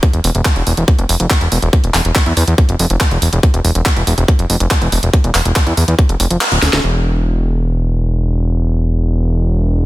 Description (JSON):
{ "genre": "psychedelic trance", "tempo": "141 BPM", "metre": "4/4", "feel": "straight", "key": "unclear", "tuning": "A4 = 440 Hz", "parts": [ { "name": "electronic kick drum", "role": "drums", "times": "0.0-6.1 s", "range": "none", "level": "-12 LUFS", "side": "equal", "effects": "overdrive, studio ambience" }, { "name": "garage drum kit", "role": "drums", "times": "0.0-6.8 s", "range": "handclaps, hi-hat, snare drum", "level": "-17 LUFS", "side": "equal", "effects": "overdrive, studio ambience" }, { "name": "fat analog bass", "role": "bass", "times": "0.1-9.9 s", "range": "D1 to E2", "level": "-14 LUFS", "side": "equal", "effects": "none" } ], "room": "little or no reverb", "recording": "dense, heavily limited modern master", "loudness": "-12 LUFS", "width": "side -17 dB against mid", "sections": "0.0-6.8 A section; 6.8-9.9 B section", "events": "kick drops out 6.4-6.8; band accent 6.4; drum fill 6.6", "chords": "none" }